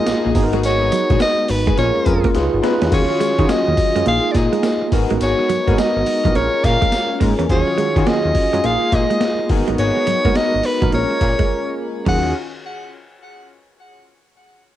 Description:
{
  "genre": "R&B, new jack swing",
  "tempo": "105 BPM",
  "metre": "4/4",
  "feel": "swing 64% on 16ths",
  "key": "Eb minor",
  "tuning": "A4 = 440 Hz",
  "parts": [
    { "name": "breathy soprano saxophone", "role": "melody", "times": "0.0-12.3 s", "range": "Cb5 to Gb5", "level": "-20 LUFS", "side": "equal", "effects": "cassette tape" },
    { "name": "tine electric piano", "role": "accompaniment", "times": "0.0-12.3 s", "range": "Bb3 to Cb5", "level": "-20 LUFS", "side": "equal", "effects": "medium stereo tremolo, cassette tape" },
    { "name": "brassy analog pad", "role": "sustained chords", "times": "0.0-12.3 s", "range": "Db3 to F5", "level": "-28 LUFS", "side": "left 1 dB", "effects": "chorus, cassette tape" },
    { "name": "direct-recorded clean electric guitar", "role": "riff", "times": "0.1-12.2 s", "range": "Gb3 to Db4", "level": "-24 LUFS", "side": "right 8 dB", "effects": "lush chorus, cassette tape" },
    { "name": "fat analog bass", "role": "bass", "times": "0.1-12.3 s", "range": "Ab1 to Eb3", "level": "-21 LUFS", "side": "equal", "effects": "none" },
    { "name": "boom bap sampler-style drum kit", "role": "drums", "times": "0.1-12.2 s", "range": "crash cymbal, hi-hat, kick drum, snare drum, tambourine", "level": "-21 LUFS", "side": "equal", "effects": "cassette tape" },
    { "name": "warm studio string section", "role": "stabs", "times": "0.2-12.3 s", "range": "Bb3 to Cb5", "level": "-28 LUFS", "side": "left 9 dB", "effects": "cassette tape, tape echo" }
  ],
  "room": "digital ambience",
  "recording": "home recording on cassette",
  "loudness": "-15 LUFS",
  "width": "side -12 dB against mid",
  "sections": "0.0-2.9 A section; 2.9-12.1 B section; 12.1-14.3 C section",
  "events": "drum fill 2.4-2.9; break 11.5-12.1",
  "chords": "0.3 Abm7; 1.8 Bbm7; 2.4 Db7; 2.9 Ebm11; 4.1 Bb7sus4; 4.9 Abm7; 6.3 Bbm7; 7.5 Ebm11; 8.6 Bb7sus4; 9.5 Abm7; 10.9 Bbm7; 12.1 Ebm11",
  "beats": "0.06 | 0.64 1.21 1.78 2.35 | 2.92 3.49 4.06 4.64 | 5.21 5.78 6.35 6.92 | 7.49 8.06 8.64 9.21 | 9.78 10.35 10.92 11.49 | 12.06"
}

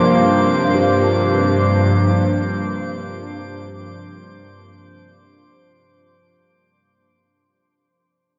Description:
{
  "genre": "ambient",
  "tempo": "free time",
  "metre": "none",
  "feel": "none",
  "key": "unclear",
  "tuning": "A4 = 440 Hz",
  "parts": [
    { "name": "evolving wavetable pad", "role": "sustained chords", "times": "0.0-6.3 s", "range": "G2 to D4", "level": "-19 LUFS", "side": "equal", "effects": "phaser, built-in reverb" },
    { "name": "felt-muted upright piano", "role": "arpeggios", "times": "0.0-6.5 s", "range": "D4 to F5", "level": "-28 LUFS", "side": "equal", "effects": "tape echo" },
    { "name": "drifting glass-harmonics texture", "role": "texture", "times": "0.0-6.3 s", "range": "C5 to D6", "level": "-24 LUFS", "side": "equal", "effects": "chorus, built-in reverb" }
  ],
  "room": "wet huge ambient reverb, RT60 8.6 s",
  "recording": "worn, warbling old tape, cassette tape, warbly pitch drift",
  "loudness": "-17 LUFS",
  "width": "mono",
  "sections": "0.0-6.3 A section",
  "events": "fade-out 0.0-6.3",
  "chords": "0.0 Gm7",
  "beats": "free time"
}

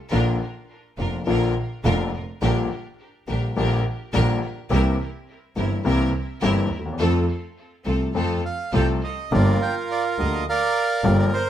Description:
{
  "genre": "tango",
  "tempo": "105 BPM",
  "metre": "4/4",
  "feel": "rubato",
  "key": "unclear",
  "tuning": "A4 = 440 Hz",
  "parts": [
    { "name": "warm grand piano", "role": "accompaniment", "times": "0.1-11.3 s", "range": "F1 to A4", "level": "-24 LUFS", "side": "left 4 dB", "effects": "none" },
    { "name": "clear studio string section", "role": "stabs", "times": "0.1-9.0 s", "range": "C4 to Bb4", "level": "-30 LUFS", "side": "right 1 dB", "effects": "tape echo" },
    { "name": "warm double bass", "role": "bass", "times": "0.1-11.3 s", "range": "F1 to F2", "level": "-23 LUFS", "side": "right 2 dB", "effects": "none" },
    { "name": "bandoneon", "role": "melody", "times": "8.5-11.5 s", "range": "F4 to G5", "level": "-23 LUFS", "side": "right 4 dB", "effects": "plate reverb" }
  ],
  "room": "moderate studio reverb, RT60 0.8 s",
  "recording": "none",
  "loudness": "-20 LUFS",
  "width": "side -10 dB against mid",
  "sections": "0.0-9.3 A section; 9.3-11.5 B section",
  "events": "none",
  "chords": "0.1 Bb; 2.4 Gm/Bb; 4.7 C7; 7.0 F; 9.3 Gm7",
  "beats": "| 0.12 0.70 1.28 1.85 | 2.42 3.00 3.57 4.14 | 4.71 5.28 5.85 6.42 | 7.00 7.57 8.15 8.74 | 9.32 9.89 10.47 11.04"
}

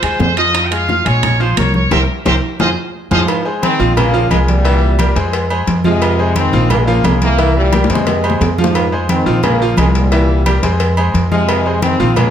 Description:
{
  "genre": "latin, salsa",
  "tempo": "176 BPM",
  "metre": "4/4",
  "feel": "straight",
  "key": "F minor",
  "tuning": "A4 = 439 Hz",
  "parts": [
    { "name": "bright trumpet section", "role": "melody", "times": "0.0-3.2 s", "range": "Bb4 to G5", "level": "-17 LUFS", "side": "right 1 dB", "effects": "slapback echo" },
    { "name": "bright baby grand piano", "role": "accompaniment", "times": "0.0-12.3 s", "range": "E3 to F6", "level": "-19 LUFS", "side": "equal", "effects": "none" },
    { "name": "upright bass", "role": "bass", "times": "0.0-12.3 s", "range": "Bb1 to F2", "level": "-16 LUFS", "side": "equal", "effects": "none" },
    { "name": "bongos and cowbell", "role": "percussion", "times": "0.0-12.3 s", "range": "none", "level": "-22 LUFS", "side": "left 4 dB", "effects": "none" },
    { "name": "congas", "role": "percussion", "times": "0.0-12.3 s", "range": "none", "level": "-21 LUFS", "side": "equal", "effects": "none" },
    { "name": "timbales and agogo bells", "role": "percussion", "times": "0.0-12.3 s", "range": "none", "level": "-22 LUFS", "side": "right 5 dB", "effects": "none" },
    { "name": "bright trombone section", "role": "melody", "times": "3.1-12.3 s", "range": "Ab2 to C4", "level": "-17 LUFS", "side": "equal", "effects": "none" }
  ],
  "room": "moderate large studio reverb, RT60 1.2 s",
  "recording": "none",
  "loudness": "-11 LUFS",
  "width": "side -9 dB against mid",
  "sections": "0.0-3.3 A section; 3.3-12.3 B section",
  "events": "band accent 1.9-3.3; drum fill 2.3-3.3, 7.7-8.8",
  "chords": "0.0 Fm7; 1.2 Bb5; 1.9 C7; 2.6 Fm7; 4.6 C7; 5.3 Fm7; 7.4 C7; 8.1 Fm7; 10.1 C7; 10.8 Fm7",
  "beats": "0.20 | 0.54 0.88 1.23 1.57 | 1.91 2.25 2.60 2.94 | 3.28 3.62 3.96 4.31 | 4.65 4.99 5.33 5.67 | 6.02 6.36 6.70 7.04 | 7.38 7.73 8.07 8.41 | 8.75 9.09 9.44 9.78 | 10.12 10.46 10.80 11.14 | 11.48 11.82 12.16"
}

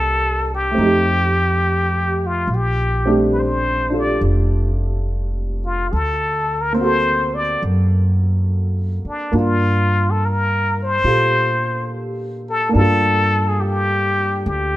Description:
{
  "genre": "jazz ballad",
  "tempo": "70 BPM",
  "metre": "4/4",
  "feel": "swing 67% on 8ths",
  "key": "G minor",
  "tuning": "A4 = 441 Hz",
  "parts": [
    { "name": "trumpet with plunger mute", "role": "melody", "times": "0.0-14.8 s", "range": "D4 to D5", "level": "-19 LUFS", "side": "left 2 dB", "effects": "none" },
    { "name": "warm grand piano", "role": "accompaniment", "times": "0.0-14.8 s", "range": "A3 to A4", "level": "-22 LUFS", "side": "right 1 dB", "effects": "none" },
    { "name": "upright bass", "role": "bass", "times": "0.0-14.8 s", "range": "F1 to Bb2", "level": "-20 LUFS", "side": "equal", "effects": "none" }
  ],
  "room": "light reverb",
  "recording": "none",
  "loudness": "-16 LUFS",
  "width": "side -15 dB against mid",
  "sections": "0.0-14.8 A section",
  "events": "none",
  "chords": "0.0 Cm9; 0.8 F9; 2.5 Bbmaj13; 5.9 D7b13; 9.3 Gm9",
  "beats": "0.77 1.63 | 2.49 3.35 4.21 5.06 | 5.92 6.77 7.63 8.48 | 9.34 10.19 11.05 11.90 | 12.76 13.62 14.47"
}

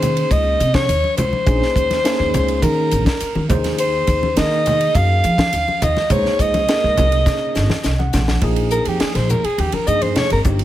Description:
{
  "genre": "electric jazz fusion",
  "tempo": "104 BPM",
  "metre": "4/4",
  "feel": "straight",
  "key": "unclear",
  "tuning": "A4 = 438 Hz",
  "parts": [
    { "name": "mellow soprano saxophone", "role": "melody", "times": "0.0-10.4 s", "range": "G4 to F5", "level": "-19 LUFS", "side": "equal", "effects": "none" },
    { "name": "tine electric piano", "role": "accompaniment", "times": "0.0-10.6 s", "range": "F3 to Gb5", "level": "-24 LUFS", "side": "right 2 dB", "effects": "fast stereo tremolo, wide subtle chorus" },
    { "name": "upright bass", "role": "bass", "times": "0.0-10.6 s", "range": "G1 to F3", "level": "-20 LUFS", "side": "equal", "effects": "none" },
    { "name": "tight funk drum kit", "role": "drums", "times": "0.0-10.6 s", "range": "hi-hat, kick drum, ride cymbal, snare drum", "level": "-23 LUFS", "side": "equal", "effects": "none" },
    { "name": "congas", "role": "percussion", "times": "0.0-10.6 s", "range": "none", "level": "-25 LUFS", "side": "left 1 dB", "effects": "none" }
  ],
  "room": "light reverb, studio reverb",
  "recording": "none",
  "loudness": "-15 LUFS",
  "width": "side -13 dB against mid",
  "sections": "0.0-8.4 A section; 8.4-10.6 B section",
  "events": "drum fill 7.3-8.4; tine electric piano fill 7.6-8.4; soprano saxophone solo 8.4-10.6",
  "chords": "0.0 Eb5; 3.5 Ab69/Eb; 6.1 Dbsus2; 8.4 Bb5",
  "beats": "0.31 0.89 | 1.47 2.05 2.63 3.21 | 3.79 4.37 4.94 5.52 | 6.10 6.68 7.26 7.84 | 8.42 9.00 9.58 10.16"
}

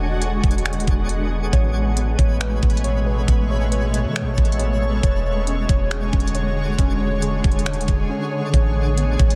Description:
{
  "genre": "hip hop, atmospheric cloud-rap",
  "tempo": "137 BPM",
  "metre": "4/4",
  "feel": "half-time",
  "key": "A major",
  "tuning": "A4 = 440 Hz",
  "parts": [
    { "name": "shimmering ambient pad", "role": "sustained chords", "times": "0.0-9.4 s", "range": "B2 to C#5", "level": "-27 LUFS", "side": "equal", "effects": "chorus, built-in reverb, sidechain pumping" },
    { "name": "soft 808-style bass", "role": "bass", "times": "0.0-9.4 s", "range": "D1 to E3", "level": "-24 LUFS", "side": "equal", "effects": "none" },
    { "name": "twinkling granular texture", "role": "texture", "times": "0.0-9.4 s", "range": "C#4 to A5", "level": "-37 LUFS", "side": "equal", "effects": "built-in reverb" },
    { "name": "trap drum kit", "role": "drums", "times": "0.2-9.4 s", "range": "finger snaps, hi-hat, kick drum", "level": "-22 LUFS", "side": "equal", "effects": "overdrive, vintage 12-bit sampler grit, soft clipping on snare" },
    { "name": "warbly dusty pluck", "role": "arpeggios", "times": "1.5-9.4 s", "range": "B3 to C#5", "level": "-32 LUFS", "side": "equal", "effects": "chorus, low-pass filter, digital delay" }
  ],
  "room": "little or no reverb",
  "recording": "dense, heavily limited modern master",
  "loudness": "-20 LUFS",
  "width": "mono",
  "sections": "0.0-8.5 A section",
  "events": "break 8.1-8.5",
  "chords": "0.0 E13; 1.5 Amaj9; 5.0 E13; 8.5 Amaj9",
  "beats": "0.22 0.65 1.09 | 1.53 1.97 2.41 2.84 | 3.28 3.72 4.16 4.60 | 5.03 5.47 5.91 6.35 | 6.79 7.22 7.66 8.10 | 8.54 8.97"
}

